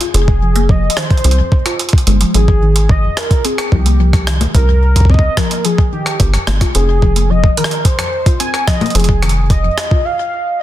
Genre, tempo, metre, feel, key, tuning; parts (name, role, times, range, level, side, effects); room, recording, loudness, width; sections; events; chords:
IDM; 109 BPM; 4/4; straight; F minor; A4 = 440 Hz
soft round pluck; arpeggios; 0.0-10.0 s; F2 to F4; -21 LUFS; left 3 dB; analog chorus, ping-pong delay
jungle sampler-style drum kit; drums; 0.0-9.9 s; congas, hi-hat, rim click; -20 LUFS; right 1 dB; soft clipping on snare, ping-pong delay
warm velvety synth lead; melody; 0.1-10.6 s; G4 to Ab5; -19 LUFS; equal; chorus, ping-pong delay
deep acid bass; bass; 0.1-9.7 s; F1 to C2; -12 LUFS; equal
electronic kick drum; drums; 0.3-10.0 s; -12 LUFS; equal
digital ambience; dense, heavily limited modern master; -11 LUFS; side -13 dB against mid
0.0-10.6 A section
break 10.1-10.6
0.0 Fm; 2.3 Ab5; 4.5 C7(no3); 6.7 Fm7